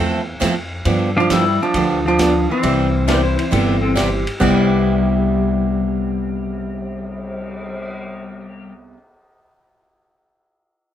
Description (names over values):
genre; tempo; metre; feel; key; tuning
country, western swing; 135 BPM; 4/4; swing 68% on 8ths; C major; A4 = 441 Hz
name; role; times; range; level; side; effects
picked steel-string acoustic guitar; accompaniment; 0.0-9.0 s; C3 to A4; -22 LUFS; right 3 dB; none
upright bass; bass; 0.0-8.9 s; G1 to G2; -22 LUFS; equal; none
vintage drum kit; drums; 0.4-7.9 s; crash cymbal, cymbal swell, hi-hat, kick drum, ride cymbal, snare drum; -27 LUFS; equal; none
clean lap steel guitar; melody; 1.2-8.7 s; E3 to E4; -20 LUFS; left 3 dB; none
archtop guitar, miked and amplified; second line; 1.2-8.9 s; E3 to B3; -24 LUFS; right 3 dB; none
pedal steel guitar; second line; 3.1-8.7 s; C4 to C5; -25 LUFS; right 1 dB; none
room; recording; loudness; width
moderate studio reverb, RT60 0.6 s; none; -15 LUFS; side -10 dB against mid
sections
0.0-4.4 A section; 4.4-8.0 B section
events
none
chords
0.0 Fmaj7; 0.9 G7; 2.6 Cmaj7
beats
0.42 | 0.86 1.31 1.75 2.19 | 2.64 3.08 3.53 3.97 | 4.41 4.86 5.30 5.75 | 6.19 6.63 7.08 7.52